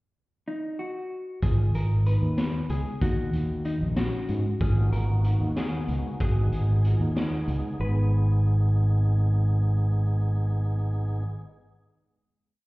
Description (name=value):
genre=progressive instrumental, band music in an uneven meter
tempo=188 BPM (eighths)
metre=5/8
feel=straight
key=G# dorian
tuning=A4 = 440 Hz
part: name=vintage hollow-body jazz guitar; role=melody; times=0.5-11.2 s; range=D#4 to B4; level=-36 LUFS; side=left 1 dB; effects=none
part: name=marimba with medium hard mallets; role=arpeggios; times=1.4-11.4 s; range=G#3 to G#4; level=-37 LUFS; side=left 2 dB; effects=none
part: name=growling fingered electric bass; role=bass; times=1.4-11.2 s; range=G#1 to G#2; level=-23 LUFS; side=equal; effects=overdrive
part: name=raw garage drum kit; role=drums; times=1.4-7.6 s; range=hi-hat, kick drum, snare drum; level=-30 LUFS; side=equal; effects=none
part: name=tonewheel organ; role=accompaniment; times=4.8-11.2 s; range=G#3 to G#4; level=-37 LUFS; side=right 2 dB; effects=overdrive, stopped rotary speaker
room=little or no reverb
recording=heard muffled through a wall, stone room reverb, EQ, nothing above 7.8 kHz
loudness=-23 LUFS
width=side -21 dB against mid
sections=0.0-1.4 pickup bar; 1.4-7.8 A section; 7.8-11.0 final chord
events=none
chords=0.0 N.C.; 1.4 G#m; 3.0 D#m7; 4.6 G#m7; 6.2 G#m